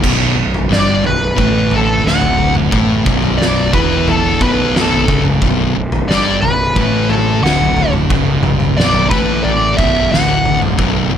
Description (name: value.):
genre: stoner and doom metal.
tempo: 89 BPM.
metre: 4/4.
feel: straight.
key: B minor.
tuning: A4 = 438 Hz.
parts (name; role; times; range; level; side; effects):
thick fuzz guitar; riff; 0.0-11.2 s; B1 to A3; -18 LUFS; left 9 dB; distortion.
thick fuzz guitar; riff; 0.0-11.2 s; B1 to A3; -19 LUFS; right 9 dB; distortion.
fuzz picked electric bass; bass; 0.0-11.2 s; B0 to A1; -20 LUFS; equal; overdrive, tube saturation.
oversized low-tuned drum kit; drums; 0.0-10.9 s; crash cymbal, kick drum, snare drum, toms; -17 LUFS; equal; none.
fuzz lead guitar; melody; 0.7-10.6 s; A4 to F#5; -17 LUFS; equal; wah, distortion, tape echo.
room: little or no reverb.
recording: none.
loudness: -11 LUFS.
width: side -9 dB against mid.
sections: 0.0-11.2 A section.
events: none.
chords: 0.0 Bm.